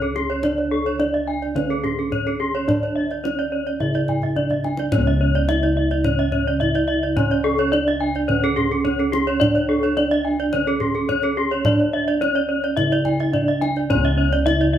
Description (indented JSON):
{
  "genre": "Balinese gamelan",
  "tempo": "107 BPM",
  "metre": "4/4",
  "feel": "straight",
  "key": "C# pelog",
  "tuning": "A4 = 440 Hz",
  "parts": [
    { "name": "gamelan-type bronze metallophone", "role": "melody", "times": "0.0-14.8 s", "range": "C#4 to E4-50c", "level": "-23 LUFS", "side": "right 2 dB", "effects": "none" },
    { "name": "gamelan-type bronze metallophone", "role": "arpeggios", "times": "0.0-14.7 s", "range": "A4-40c to E5-50c", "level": "-27 LUFS", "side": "right 4 dB", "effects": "none" },
    { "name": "gamelan-type bossed gongs", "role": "bass", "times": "0.0-14.8 s", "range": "C#2 to D4", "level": "-24 LUFS", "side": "equal", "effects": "none" },
    { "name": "kendang", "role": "percussion", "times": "0.0-14.7 s", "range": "none", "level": "-27 LUFS", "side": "left 1 dB", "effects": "none" },
    { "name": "gamelan-type bronze metallophone", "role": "arpeggios", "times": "0.2-14.8 s", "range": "G#4-45c to G#5-45c", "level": "-23 LUFS", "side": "left 4 dB", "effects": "none" }
  ],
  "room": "wet large studio reverb, RT60 0.9 s",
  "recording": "band playing live in one room",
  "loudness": "-18 LUFS",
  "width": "side -10 dB against mid",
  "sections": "0.0-13.9 A section",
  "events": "drum fill 4.2-4.9",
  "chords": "none",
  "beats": "| 0.44 1.00 1.56 2.12 | 2.68 3.24 3.80 4.36 | 4.92 5.48 6.04 6.61 | 7.17 7.73 8.29 8.85 | 9.41 9.97 10.53 11.09 | 11.65 12.21 12.77 13.33 | 13.89 14.46"
}